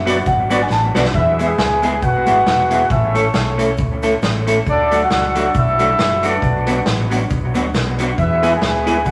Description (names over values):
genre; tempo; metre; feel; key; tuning
ska; 136 BPM; 4/4; swing 57% on 8ths; E mixolydian; A4 = 444 Hz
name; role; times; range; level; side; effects
buzzing marimba with soft mallets; melody; 0.0-1.1 s; E5 to A5; -22 LUFS; equal; none
hollow-body short-scale fingered electric bass; bass; 0.0-9.1 s; E1 to E2; -25 LUFS; equal; none
vintage hollow-body jazz guitar; accompaniment; 0.1-9.0 s; F#3 to A4; -22 LUFS; equal; analog delay
percussive tonewheel organ; stabs; 0.1-1.1, 8.4-9.0 s; E4 to D5; -23 LUFS; equal; chorus vibrato, slow rotary speaker
street-band drum kit; drums; 0.1-9.1 s; hi-hat, kick drum, snare drum; -24 LUFS; equal; none
cabasa; percussion; 0.1-9.1 s; none; -47 LUFS; equal; none
warm horn section; melody; 1.2-9.1 s; D4 to G#5; -19 LUFS; equal; none
room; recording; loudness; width
wet studio reverb, RT60 0.9 s; faint mains hum; -16 LUFS; mono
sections
0.0-1.1 A section; 1.1-9.1 B section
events
marimba solo 0.0-1.1; drum fill 0.7-1.1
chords
0.0 Bm; 1.1 E; 2.9 A; 4.7 D; 6.4 Bm; 8.2 E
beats
0.26 0.70 | 1.14 1.58 2.02 2.46 | 2.90 3.34 3.78 4.22 | 4.66 5.10 5.54 5.98 | 6.42 6.86 7.30 7.74 | 8.18 8.62 9.06